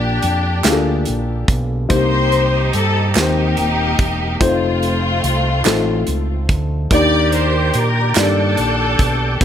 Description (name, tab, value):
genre	slow gospel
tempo	48 BPM (dotted quarters)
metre	6/8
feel	straight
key	unclear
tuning	A4 = 440 Hz
part	clear studio string section	melody	0.0-9.4 s	A3 to D5	-19 LUFS	left 2 dB	none
part	dark concert grand piano	accompaniment	0.0-9.4 s	Bb2 to D5	-20 LUFS	left 3 dB	none
part	fingered electric bass	bass	0.0-9.4 s	Eb1 to Bb2	-19 LUFS	right 1 dB	none
part	modern studio drum kit	drums	0.2-9.4 s	hi-hat, kick drum, snare drum	-19 LUFS	right 1 dB	none
part	group handclap	percussion	0.6-8.5 s	none	-25 LUFS	right 7 dB	none
part	overdriven tonewheel organ	sustained chords	6.9-9.4 s	G4 to G5	-25 LUFS	right 4 dB	slow rotary speaker, chorus vibrato
room	moderate large studio reverb, RT60 1.3 s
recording	none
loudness	-14 LUFS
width	side -9 dB against mid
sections	0.0-9.4 A section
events	none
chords	0.0 Gm7/Bb; 1.9 Cm7; 4.4 F7; 6.9 Ebmaj7